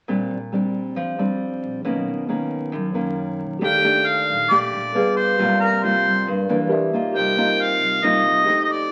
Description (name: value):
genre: bossa nova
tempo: 136 BPM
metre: 4/4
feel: straight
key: Bb major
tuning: A4 = 439 Hz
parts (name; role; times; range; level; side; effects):
- nylon-string guitar; accompaniment; 0.1-8.9 s; F#2 to Ab4; -25 LUFS; equal; none
- upright bass; bass; 0.1-8.9 s; Bb1 to G2; -33 LUFS; equal; none
- warm harmonica; melody; 3.6-8.9 s; Bb4 to G5; -20 LUFS; equal; none
- tine electric piano; accompaniment; 3.6-8.9 s; G4 to F5; -28 LUFS; equal; phaser
room: wet studio reverb, RT60 0.9 s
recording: very old 78 rpm record, vinyl crackle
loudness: -20 LUFS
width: mono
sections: 0.1-3.6 A section; 3.6-8.9 B section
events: none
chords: 0.1 Bb69; 1.9 Bmaj9; 3.6 Ebmaj9#11; 4.9 G7b9; 5.4 C7sus4; 6.7 C9; 7.2 F7sus4/C; 8.5 F9